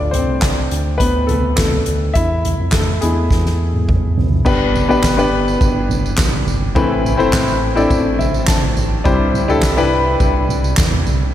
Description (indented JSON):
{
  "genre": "piano-driven pop",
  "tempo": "104 BPM",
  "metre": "4/4",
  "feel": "straight",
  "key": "unclear",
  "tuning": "A4 = 440 Hz",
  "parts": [
    { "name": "warm upright piano", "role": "accompaniment", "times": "0.0-11.3 s", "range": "G2 to A5", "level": "-17 LUFS", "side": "left 2 dB", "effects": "none" },
    { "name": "round analog bass", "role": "bass", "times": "0.0-11.3 s", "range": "G1 to F2", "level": "-20 LUFS", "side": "equal", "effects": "none" },
    { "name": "soft-mallet drum kit", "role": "drums", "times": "0.1-11.2 s", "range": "crash cymbal, handclaps, hi-hat, kick drum, ride cymbal, snare drum, toms", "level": "-18 LUFS", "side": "right 1 dB", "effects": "none" },
    { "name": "tambourine", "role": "percussion", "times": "4.5-11.2 s", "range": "none", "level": "-32 LUFS", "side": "right 6 dB", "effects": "none" }
  ],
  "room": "moderate lush hall reverb, RT60 2.6 s",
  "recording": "dreamy mix soaked in reverb",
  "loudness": "-13 LUFS",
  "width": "side -11 dB against mid",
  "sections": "0.0-4.5 A section; 4.5-11.3 B section",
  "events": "upright piano solo 0.0-4.5; drum fill 3.3-4.5; upright piano fill 7.9-9.1",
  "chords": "0.0 Dm; 2.2 E; 4.5 G; 6.8 Amadd9; 9.1 Cadd9"
}